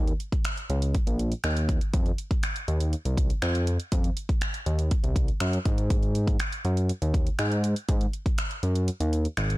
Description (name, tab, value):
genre	dance-pop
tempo	121 BPM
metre	4/4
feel	straight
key	unclear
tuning	A4 = 441 Hz
part	fat analog bass	bass	0.0-9.6 s	Ab1 to Ab2	-25 LUFS	equal	sidechain pumping
part	pop drum kit	drums	0.1-9.6 s	finger snaps, hi-hat, kick drum	-26 LUFS	equal	soft clipping on snare
room	little or no reverb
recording	blown-out, overdriven recording, overdrive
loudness	-24 LUFS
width	side -18 dB against mid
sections	0.0-9.6 A section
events	kick muted 8.9-9.6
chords	none